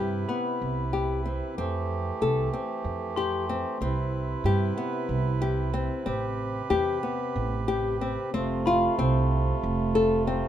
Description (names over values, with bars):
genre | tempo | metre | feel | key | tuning
contemporary instrumental, chamber music in an uneven meter | 186 BPM (eighths) | 7/8 | straight | unclear | A4 = 440 Hz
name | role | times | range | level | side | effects
hand-pumped harmonium | sustained chords | 0.0-10.5 s | C3 to B4 | -32 LUFS | right 4 dB | none
nylon-string guitar | arpeggios | 0.0-10.5 s | B3 to A4 | -28 LUFS | left 4 dB | none
upright bass | bass | 0.0-10.4 s | F1 to G2 | -28 LUFS | right 2 dB | none
glockenspiel with soft plastic mallets | texture | 0.3-3.8, 8.7-9.3 s | B5 to C6 | -37 LUFS | left 9 dB | none
room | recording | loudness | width
little or no reverb | close, detailed microphones | -25 LUFS | side -10 dB against mid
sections
0.0-8.3 A section; 8.3-10.5 B section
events
none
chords
0.0 Cmaj7; 1.6 Fmaj9; 3.8 Cmaj7; 6.1 Am9; 8.3 F